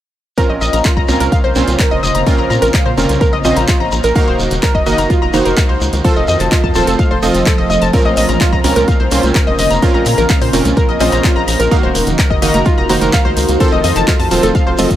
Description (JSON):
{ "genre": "progressive house", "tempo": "127 BPM", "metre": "4/4", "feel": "straight", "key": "Bb harmonic minor", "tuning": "A4 = 442 Hz", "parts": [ { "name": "evolving wavetable pad", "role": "sustained chords", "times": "1.2-15.0 s", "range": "Db3 to C5", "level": "-21 LUFS", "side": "equal", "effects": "chorus, built-in reverb, sidechain pumping" }, { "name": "analog pluck", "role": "arpeggios", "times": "0.4-14.7 s", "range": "F4 to Bb5", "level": "-17 LUFS", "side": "left 1 dB", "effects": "chorus, sidechain pumping, digital delay" }, { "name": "supersaw stab", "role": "stabs", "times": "0.4-15.0 s", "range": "Bb2 to Eb5", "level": "-17 LUFS", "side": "right 2 dB", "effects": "sidechain pumping, digital delay" }, { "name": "deep house drum kit", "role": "drums", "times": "0.4-15.0 s", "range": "handclaps, hi-hat", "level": "-22 LUFS", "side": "left 1 dB", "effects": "sidechain pumping on hats, small room ambience" }, { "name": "electronic kick drum", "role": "drums", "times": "0.4-15.0 s", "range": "none", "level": "-14 LUFS", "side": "equal", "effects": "small room ambience" }, { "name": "shekere", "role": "percussion", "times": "0.4-15.0 s", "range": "none", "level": "-26 LUFS", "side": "right 2 dB", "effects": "none" }, { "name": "tight sequencer bass", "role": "bass", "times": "0.5-15.0 s", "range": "Eb1 to Bb2", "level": "-18 LUFS", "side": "equal", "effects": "sidechain pumping" }, { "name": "congas", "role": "percussion", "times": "8.0-14.9 s", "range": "none", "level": "-24 LUFS", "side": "right 2 dB", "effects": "sidechain pumping on perc" } ], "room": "little or no reverb", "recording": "none", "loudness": "-10 LUFS", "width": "side -12 dB against mid", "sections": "0.4-15.0 A section", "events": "filter sweep on ambient pad 0.4-15.0", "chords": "0.4 Bbmadd9; 4.2 Ebm; 6.0 F; 7.9 Bbmadd9; 11.7 Ebm; 13.6 F", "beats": "| 0.38 0.85 1.32 1.79 | 2.27 2.74 3.21 3.68 | 4.16 4.63 5.10 5.57 | 6.05 6.52 6.99 7.46 | 7.94 8.41 8.88 9.35 | 9.82 10.30 10.77 11.24 | 11.71 12.19 12.66 13.13 | 13.61 14.08 14.55" }